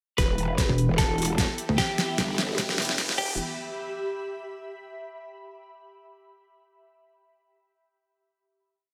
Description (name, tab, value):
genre	heavy wobble dubstep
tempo	150 BPM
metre	4/4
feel	swing 54% on 16ths, half-time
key	E minor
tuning	A4 = 440 Hz
part	semi-hollow electric guitar	melody	0.2-3.3 s	G4 to B4	-34 LUFS	equal	spring reverb, delay
part	lush unison pad	sustained chords	0.2-3.4 s	E3 to G4	-40 LUFS	equal	none
part	growl bass	bass	0.2-3.4 s	E1 to G1	-31 LUFS	equal	chorus, overdrive
part	dubstep drum kit	drums	0.2-3.3 s	crash cymbal, hi-hat, snare drum	-31 LUFS	equal	overdrive
part	electronic kick drum	drums	0.2-3.3 s	none	-31 LUFS	equal	overdrive
part	riser	sound effects	1.6-3.4 s	none	-38 LUFS	equal	none
part	ethereal airy pad	texture	1.5-4.9 s	G4 to B5	-40 LUFS	equal	ensemble chorus, built-in reverb, phaser, sidechain pumping
part	pulsing pluck wobble bass	bass	0.7-3.2 s	E1 to D2	-28 LUFS	equal	chorus, overdrive
room	light reverb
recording	high-pass filter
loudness	-26 LUFS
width	mono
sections	0.2-3.4 build; 3.4-5.0 final note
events	build-up 0.2-3.4; drum fill 0.2-3.4; filter sweep 0.2-3.4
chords	0.2 Em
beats	| 0.18 0.58 0.98 1.38 | 1.78 2.18 2.58 2.98 | 3.38 3.78 4.18 4.58